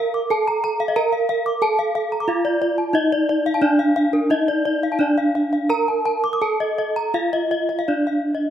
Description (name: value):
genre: gamelan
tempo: 81-91 BPM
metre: 4/4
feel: straight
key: D pelog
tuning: A4 = 440 Hz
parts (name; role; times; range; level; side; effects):
- gamelan-type bronze metallophone; melody; 0.0-8.5 s; D4 to Bb4-20c; -20 LUFS; right 2 dB; none
- gamelan-type bronze metallophone; arpeggios; 0.0-8.4 s; Bb4-20c to Eb6+20c; -22 LUFS; left 2 dB; none
room: wet plate reverb, RT60 2.4 s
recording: rough home demo mix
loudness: -18 LUFS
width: side -10 dB against mid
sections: 0.0-7.9 A section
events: none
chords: none